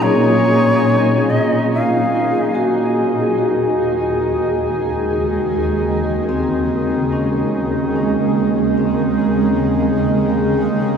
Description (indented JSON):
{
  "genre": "ambient",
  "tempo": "72 BPM",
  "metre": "4/4",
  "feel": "straight",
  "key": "unclear",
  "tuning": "A4 = 440 Hz",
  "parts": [
    { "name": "bright reedy shakuhachi", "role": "melody", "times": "0.0-2.9 s", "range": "Db5 to F5", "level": "-20 LUFS", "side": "left 1 dB", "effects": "tape echo" },
    { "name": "shimmering ambient pad", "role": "sustained chords", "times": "0.0-11.0 s", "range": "Eb2 to Ab4", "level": "-17 LUFS", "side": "right 1 dB", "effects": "chorus, built-in reverb" },
    { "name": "vibraphone with medium mallets", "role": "arpeggios", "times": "0.0-11.0 s", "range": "Bb3 to C6", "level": "-20 LUFS", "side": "left 2 dB", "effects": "tape echo" },
    { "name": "hand-pumped harmonium", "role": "drone", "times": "0.0-11.0 s", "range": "Eb3 to Eb4", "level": "-29 LUFS", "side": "equal", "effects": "none" }
  ],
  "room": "wet echo chamber reverb, RT60 2.2 s",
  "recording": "echo-heavy mix",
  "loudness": "-14 LUFS",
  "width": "side -7 dB against mid",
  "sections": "0.0-11.0 A section",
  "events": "fade-in on harmonium 0.0-11.0",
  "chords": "0.0 Ebmadd9; 3.4 Dbsus2/Eb"
}